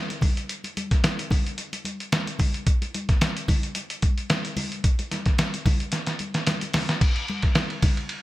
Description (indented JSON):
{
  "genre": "pop",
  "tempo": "110 BPM",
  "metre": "4/4",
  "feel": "swing 54% on 16ths",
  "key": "none",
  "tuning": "none",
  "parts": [
    { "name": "lo-fi sampler-style drum kit", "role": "drums", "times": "0.1-8.2 s", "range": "crash cymbal, hi-hat, kick drum, ride cymbal, snare drum", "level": "-22 LUFS", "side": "equal", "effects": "none" },
    { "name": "congas", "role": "percussion", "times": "0.1-8.0 s", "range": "none", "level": "-32 LUFS", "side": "left 1 dB", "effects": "none" }
  ],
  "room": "light reverb",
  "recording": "bright 1980s-style digital production",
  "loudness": "-22 LUFS",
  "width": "side -17 dB against mid",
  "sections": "0.0-7.0 A section; 7.0-8.2 A section",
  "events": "drum fill 5.9-7.0",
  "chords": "none",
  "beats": "| 0.49 1.04 1.58 2.12 | 2.67 3.21 3.75 4.30 | 4.84 5.38 5.93 6.47 | 7.01 7.56 8.10"
}